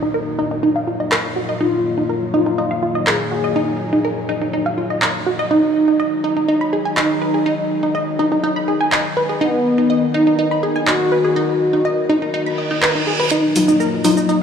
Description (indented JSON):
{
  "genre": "melodic techno",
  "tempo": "123 BPM",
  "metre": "4/4",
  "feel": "straight",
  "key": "Eb minor",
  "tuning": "A4 = 437 Hz",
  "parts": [
    { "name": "analog synth brass", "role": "melody", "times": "0.0-14.4 s", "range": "Cb4 to Ab4", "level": "-20 LUFS", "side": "equal", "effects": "chorus, dub echo" },
    { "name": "dark analog pad", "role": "sustained chords", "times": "0.0-14.4 s", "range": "Gb3 to Eb5", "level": "-27 LUFS", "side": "left 1 dB", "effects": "chorus, vintage 12-bit sampler grit" },
    { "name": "wide unison pluck", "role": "arpeggios", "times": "0.0-14.4 s", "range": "Eb4 to Cb6", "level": "-19 LUFS", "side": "equal", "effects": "ping-pong delay" },
    { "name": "bowed-like drone", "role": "drone", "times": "0.0-14.4 s", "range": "Eb3 to Bb3", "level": "-28 LUFS", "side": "left 1 dB", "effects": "built-in reverb" },
    { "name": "techno drum kit", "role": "drums", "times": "1.1-14.4 s", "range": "handclaps, hi-hat, shaker", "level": "-22 LUFS", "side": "equal", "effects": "high-pass filter on perc, high-pass filter on hats, high-pass filter on snare, high-pass filter on room" },
    { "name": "reverse cymbal", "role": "sound effects", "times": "12.5-13.3 s", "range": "none", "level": "-24 LUFS", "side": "right 4 dB", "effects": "none" },
    { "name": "synth brass stab", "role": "stabs", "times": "13.6-14.2 s", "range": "Gb3 to F4", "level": "-20 LUFS", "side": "left 4 dB", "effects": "chorus, cassette tape, ping-pong delay" }
  ],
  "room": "wet huge ambient reverb, RT60 4.7 s",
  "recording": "played on a big sound system in a bare room, large studio reverb",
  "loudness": "-15 LUFS",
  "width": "side -7 dB against mid",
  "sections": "0.0-13.3 A section; 13.3-14.4 B section",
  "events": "filter sweep on synth arpeggio sound 0.0-13.3; reverse cymbal 12.5-13.3; build-up 13.3-14.4; filter sweep on analog polysynth 13.3-14.4; filter sweep on synth stab 13.3-14.4; filter sweep 13.3-14.4",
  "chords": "0.0 Ebmadd9; 5.5 Ab5; 13.3 Ebmadd9",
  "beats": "0.14 0.63 1.12 | 1.61 2.09 2.58 3.07 | 3.56 4.04 4.53 5.02 | 5.51 6.00 6.48 6.97 | 7.46 7.95 8.44 8.92 | 9.41 9.90 10.39 10.88 | 11.36 11.85 12.34 12.83 | 13.31 13.80 14.29"
}